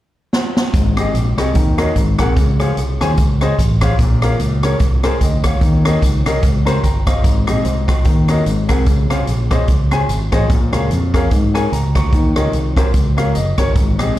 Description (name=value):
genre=uptempo gospel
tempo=147 BPM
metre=4/4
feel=swing 58% on 8ths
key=Ab major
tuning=A4 = 441 Hz
part: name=swinging big-band drum kit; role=drums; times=0.3-14.2 s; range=hi-hat, kick drum, rim click, snare drum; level=-16 LUFS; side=equal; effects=none
part: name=warm upright piano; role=accompaniment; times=0.7-14.2 s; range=Ab2 to Db6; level=-20 LUFS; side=left 2 dB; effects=slapback echo
part: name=fingered electric bass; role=bass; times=0.7-14.2 s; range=Gb1 to Ab2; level=-17 LUFS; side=equal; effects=none
room=little or no reverb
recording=live gig heard through the venue's PA, club reverb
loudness=-13 LUFS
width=side -14 dB against mid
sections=0.7-7.2 A section; 7.2-14.2 B section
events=drum fill 0.3-0.7; upright piano fill 6.4-7.2, 12.9-13.8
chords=0.0 N.C.; 0.7 Abmaj7; 1.5 Ebm7; 2.0 Ab9; 2.4 Dbmaj7; 4.0 Bbm7; 5.6 Eb7; 7.2 Abmaj7; 8.1 Ebm7; 8.5 Ab9; 8.9 Dbmaj7(no3); 10.5 Bbm7; 12.1 Eb7